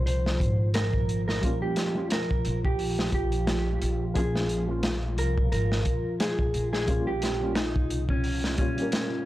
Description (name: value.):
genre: trip hop.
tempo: 88 BPM.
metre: 4/4.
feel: swing 56% on 16ths.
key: Bb dorian.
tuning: A4 = 439 Hz.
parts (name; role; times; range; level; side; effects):
mellow electric guitar; melody; 0.0-9.3 s; Db4 to C5; -31 LUFS; right 1 dB; tape echo.
dark analog pad; sustained chords; 0.0-9.3 s; F3 to F4; -34 LUFS; equal; chorus.
upright bass; bass; 0.0-8.6 s; Ab1 to C2; -29 LUFS; equal; none.
crunchy breakbeat drum kit; drums; 0.1-9.1 s; hi-hat, kick drum, snare drum; -28 LUFS; equal; none.
felt-muted upright piano; accompaniment; 1.4-9.3 s; F3 to Bb4; -33 LUFS; left 1 dB; tremolo, tape echo.
room: small room ambience.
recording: dry, gritty hardware recording.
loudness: -24 LUFS.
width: side -15 dB against mid.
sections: 0.0-9.3 A section.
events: none.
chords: 0.0 Bb5; 1.4 Bbm6; 4.2 Bbm; 6.9 Bbm69.